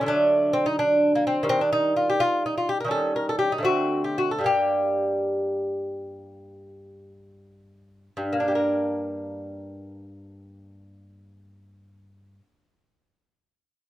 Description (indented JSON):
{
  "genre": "classical, baroque-style dance for lute",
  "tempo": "56-85 BPM (dotted quarters)",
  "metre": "12/8",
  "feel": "rubato",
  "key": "G minor",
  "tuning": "A4 = 442 Hz",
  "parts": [
    { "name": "lute", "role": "solo", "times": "0.0-12.8 s", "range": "G2 to Bb4", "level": "-22 LUFS", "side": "equal", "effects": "none" }
  ],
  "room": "light reverb",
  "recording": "close, detailed microphones",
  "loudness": "-21 LUFS",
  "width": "side -14 dB against mid",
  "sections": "0.0-8.1 A section; 8.1-12.3 B section",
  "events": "slowing down 2.4-8.1",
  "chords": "0.1 D; 1.5 Ebadd9; 2.9 Eb7; 3.6 D7; 4.4 Gm"
}